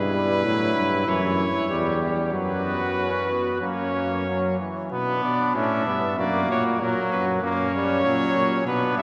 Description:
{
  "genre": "classical, imitative canzona for brass ensemble",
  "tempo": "95 BPM",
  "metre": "4/4",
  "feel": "straight",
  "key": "unclear",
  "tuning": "A4 = 440 Hz",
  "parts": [
    { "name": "clear cornet", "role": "melody", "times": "0.0-9.0 s", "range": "A#4 to E5", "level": "-30 LUFS", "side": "equal", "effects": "none" },
    { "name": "warm trumpet", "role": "second line", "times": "0.0-9.0 s", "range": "C#4 to G4", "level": "-30 LUFS", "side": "equal", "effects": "none" },
    { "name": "warm bass trombone", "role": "bass", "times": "0.0-9.0 s", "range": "E2 to B2", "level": "-29 LUFS", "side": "equal", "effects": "none" },
    { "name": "brilliant trombone", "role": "accompaniment", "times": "0.1-9.0 s", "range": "E3 to C#4", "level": "-29 LUFS", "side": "equal", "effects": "none" }
  ],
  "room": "wet cathedral reverb, RT60 4.3 s",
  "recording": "none",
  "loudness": "-24 LUFS",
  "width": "mono",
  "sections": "0.0-4.9 A section; 4.9-9.0 B section",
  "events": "none",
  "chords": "0.0 C#dim/G; 2.3 F#sus4; 3.6 F#; 4.9 Bm; 6.2 F#"
}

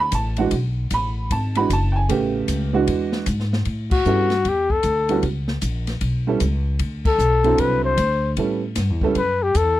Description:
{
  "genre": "jazz, small-group swing and bop",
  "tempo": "153 BPM",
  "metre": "4/4",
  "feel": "swing 64% on 8ths",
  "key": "A mixolydian",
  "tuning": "A4 = 441 Hz",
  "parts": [
    { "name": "warm upright piano", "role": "accompaniment", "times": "0.0-9.2 s", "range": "C#3 to B5", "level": "-22 LUFS", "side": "right 5 dB", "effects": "none" },
    { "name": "upright bass", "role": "bass", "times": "0.0-9.8 s", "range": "F#1 to A2", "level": "-22 LUFS", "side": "left 1 dB", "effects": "none" },
    { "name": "open jazz drum kit", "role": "drums", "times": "0.1-9.7 s", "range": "crash cymbal, hi-hat, kick drum, ride cymbal, snare drum", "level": "-28 LUFS", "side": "left 1 dB", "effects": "none" },
    { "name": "breathy trumpet", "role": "melody", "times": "3.9-9.8 s", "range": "F#4 to C5", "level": "-19 LUFS", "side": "left 4 dB", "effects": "none" }
  ],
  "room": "little or no reverb",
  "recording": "dry, close 1970s-style studio recording",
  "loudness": "-18 LUFS",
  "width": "side -14 dB against mid",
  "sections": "0.0-3.7 A section; 3.7-9.8 B section",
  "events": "band accent 3.9, 7.0",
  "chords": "0.0 Bm7; 0.5 Eadd9 (rootless); 2.1 A9; 2.9 E9; 3.7 A9; 6.8 D9; 8.4 A9"
}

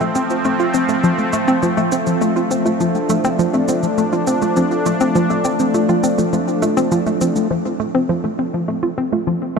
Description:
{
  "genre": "ambient, sequencer-driven space music",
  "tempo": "102 BPM",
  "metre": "4/4",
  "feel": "straight",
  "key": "unclear",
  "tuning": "A4 = 440 Hz",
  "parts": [
    { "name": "sweeping resonant pad", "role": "sustained chords", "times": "0.0-9.6 s", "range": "F3 to D4", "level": "-19 LUFS", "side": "equal", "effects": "chorus" },
    { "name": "warbly dusty pluck", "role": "arpeggios", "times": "0.0-9.6 s", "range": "F3 to F4", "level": "-22 LUFS", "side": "left 2 dB", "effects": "chorus, auto-pan, tape echo" },
    { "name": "hollow square pluck", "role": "riff", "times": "0.0-9.6 s", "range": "F3 to F4", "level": "-20 LUFS", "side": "equal", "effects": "chorus, tape echo" },
    { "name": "congas and shaker", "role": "percussion", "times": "0.0-7.5 s", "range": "none", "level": "-31 LUFS", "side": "right 3 dB", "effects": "tape echo" }
  ],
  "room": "wet huge ambient reverb, RT60 7.8 s",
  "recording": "none",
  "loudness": "-15 LUFS",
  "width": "side -5 dB against mid",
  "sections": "0.0-7.5 A section; 7.5-9.6 B section",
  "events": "none",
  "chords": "0.0 F"
}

